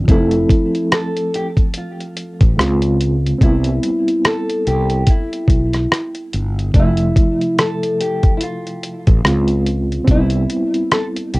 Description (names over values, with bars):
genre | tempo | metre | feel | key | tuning
lo-fi hip hop | 72 BPM | 4/4 | swing 59% on 16ths | C major | A4 = 440 Hz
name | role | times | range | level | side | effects
reed electric piano | accompaniment | 0.0-11.4 s | C3 to E5 | -20 LUFS | right 1 dB | fast tremolo, low-pass filter, cassette tape, plate reverb
fretless electric bass | bass | 0.0-11.4 s | F1 to Db2 | -18 LUFS | equal | none
nylon-string guitar | melody | 0.1-11.4 s | E4 to A4 | -21 LUFS | left 1 dB | low-pass filter, cassette tape, tape echo, plate reverb
dusty soul sampler-style drum kit | drums | 0.1-11.4 s | hi-hat, kick drum, rim click | -14 LUFS | equal | vintage 12-bit sampler grit, cassette tape
room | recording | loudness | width
light reverb | home recording on cassette | -14 LUFS | side -22 dB against mid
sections
0.0-11.4 A section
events
none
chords
0.1 Fmaj7; 2.6 Dbmaj7; 3.4 Cmaj7; 6.7 Fmaj7; 9.2 Dbmaj7; 10.1 Cmaj7